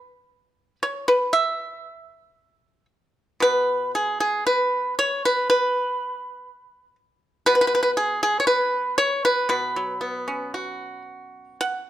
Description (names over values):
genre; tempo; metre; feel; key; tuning
chinese traditional, Chinese solo plucked strings; 59 BPM; 2/4; rubato; unclear; A4 = 440 Hz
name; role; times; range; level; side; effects
pipa; solo; 0.0-11.9 s; B2 to F#5; -20 LUFS; equal; none
room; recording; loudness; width
light reverb; close, detailed microphones; -20 LUFS; side -12 dB against mid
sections
0.0-3.4 A section; 3.4-11.9 B section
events
none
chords
none